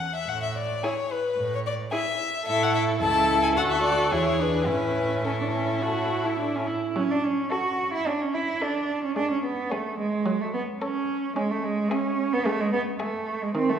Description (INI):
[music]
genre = quick classical-period movement for string quartet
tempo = 109 BPM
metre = 4/4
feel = straight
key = A major, F# minor from 7.0 s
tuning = A4 = 441 Hz
[part]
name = rich violin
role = melody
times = 0.0-13.4 s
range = A4 to A5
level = -28 LUFS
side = left 4 dB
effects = none
[part]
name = rich cello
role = bass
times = 0.3-13.8 s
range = C#2 to F#4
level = -27 LUFS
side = right 3 dB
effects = none
[part]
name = warm violin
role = second line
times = 0.8-13.4 s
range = E4 to A4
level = -30 LUFS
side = left 2 dB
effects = none
[part]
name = warm viola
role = accompaniment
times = 0.8-13.8 s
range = D#3 to F#4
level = -29 LUFS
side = right 3 dB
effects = none
[sound]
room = wet recital hall reverb, RT60 1.7 s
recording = recorded in a church or concert hall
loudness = -23 LUFS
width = side -8 dB against mid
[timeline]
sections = 0.0-7.0 A section; 7.0-13.8 B section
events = none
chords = 0.3 N.C.; 2.5 A; 3.6 D; 4.1 E; 4.7 A; 7.0 F#m; 9.2 C#5/G#; 10.3 F#m; 11.4 C#m/G#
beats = | 0.28 0.83 1.38 1.92 | 2.47 3.01 3.56 4.12 | 4.68 5.26 5.83 6.39 | 6.96 7.52 8.07 8.62 | 9.17 9.71 10.26 10.82 | 11.37 11.91 12.46 13.01 | 13.55